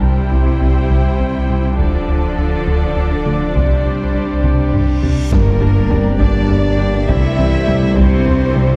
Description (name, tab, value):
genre	cinematic, hybrid orchestral and electronic film score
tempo	68 BPM (dotted quarters)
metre	6/8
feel	straight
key	G dorian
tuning	A4 = 440 Hz
part	warm symphonic violin section	second line	0.0-8.8 s	A4 to G5	-27 LUFS	equal	none
part	rich symphonic viola section	accompaniment	0.0-8.6 s	F3 to E4	-27 LUFS	equal	none
part	chorused pulse-width pad	sustained chords	0.0-8.8 s	F3 to D5	-25 LUFS	equal	none
part	thumb-piano-like synth pluck	arpeggios	0.0-8.7 s	C3 to G4	-27 LUFS	equal	none
part	rubbery square bass	riff	0.0-8.7 s	C2 to G3	-21 LUFS	equal	none
part	rich symphonic cello section	bass	0.0-8.8 s	G2 to D3	-25 LUFS	equal	none
part	warm sub bass	bass	0.0-8.8 s	D1 to C2	-22 LUFS	equal	none
part	taiko ensemble	drums	1.8-8.5 s	none	-23 LUFS	equal	none
part	reverse cymbal and impact	sound effects	5.0-7.1 s	none	-27 LUFS	equal	none
part	warm cello	melody	5.3-8.8 s	Bb3 to E4	-26 LUFS	equal	none
part	warm chamber violin section	melody	5.3-8.8 s	Bb4 to E5	-33 LUFS	equal	none
part	dark French horn section	sustained chords	5.3-8.8 s	G3 to D4	-28 LUFS	equal	none
part	mellow trombone section	sustained chords	5.3-8.8 s	G2 to G3	-27 LUFS	equal	none
part	rich studio double bass section	bass	5.3-8.8 s	G1 to C2	-24 LUFS	equal	none
room	moderate concert hall reverb, RT60 2.4 s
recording	dark, warm production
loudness	-15 LUFS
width	mono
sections	0.0-5.3 A section; 5.3-8.8 B section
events	drum fill 4.4-5.3; reverse cymbal 5.0-5.3; impact 5.3-7.1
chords	0.0 C; 1.8 Dm; 3.6 Csus2; 5.3 Gm; 7.1 C